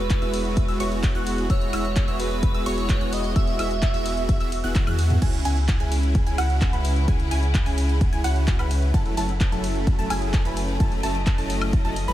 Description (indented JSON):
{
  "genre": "EDM, festival progressive house",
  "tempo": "129 BPM",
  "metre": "4/4",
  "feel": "straight",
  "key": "unclear",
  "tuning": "A4 = 440 Hz",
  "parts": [
    { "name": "airy dreamy lead", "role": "melody", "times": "0.0-4.7 s", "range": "B4 to E5", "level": "-32 LUFS", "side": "right 2 dB", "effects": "chorus, diffuse ambient delay" },
    { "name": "rich chamber string section", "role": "sustained chords", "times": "0.0-12.1 s", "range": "C#3 to D#5", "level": "-33 LUFS", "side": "left 1 dB", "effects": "sidechain pumping" },
    { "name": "saturated sub bass", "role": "bass", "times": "0.0-12.1 s", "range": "E1 to E2", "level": "-25 LUFS", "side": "equal", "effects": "sidechain pumping" },
    { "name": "big-room dance drum kit", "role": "drums", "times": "0.1-12.1 s", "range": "crash cymbal, handclaps, hi-hat, ride cymbal, toms, woodblock", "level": "-33 LUFS", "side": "left 1 dB", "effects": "none" },
    { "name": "electronic kick drum", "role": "drums", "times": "0.1-11.8 s", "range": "none", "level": "-22 LUFS", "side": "equal", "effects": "none" },
    { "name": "wide unison pluck", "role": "arpeggios", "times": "0.2-12.1 s", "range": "F#5 to F#6", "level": "-32 LUFS", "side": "right 1 dB", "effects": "sidechain pumping, diffuse ambient delay" },
    { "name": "supersaw chords", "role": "riff", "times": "0.2-12.1 s", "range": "F#3 to F#5", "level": "-29 LUFS", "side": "right 1 dB", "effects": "sidechain pumping, diffuse ambient delay" }
  ],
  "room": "light reverb, digital ambience",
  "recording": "none",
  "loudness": "-20 LUFS",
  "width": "side -13 dB against mid",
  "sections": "0.0-5.2 A section; 5.2-12.1 A section",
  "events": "drop 0.0-5.2, 5.2-12.1; drum fill 4.8-5.2",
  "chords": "0.0 Eadd9; 5.2 C#m; 8.9 F#m7",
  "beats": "0.10 0.57 1.03 | 1.50 1.96 2.43 2.89 | 3.36 3.82 4.29 4.75 | 5.22 5.68 6.15 6.62 | 7.08 7.54 8.01 8.47 | 8.94 9.40 9.87 10.34 | 10.80 11.27 11.73"
}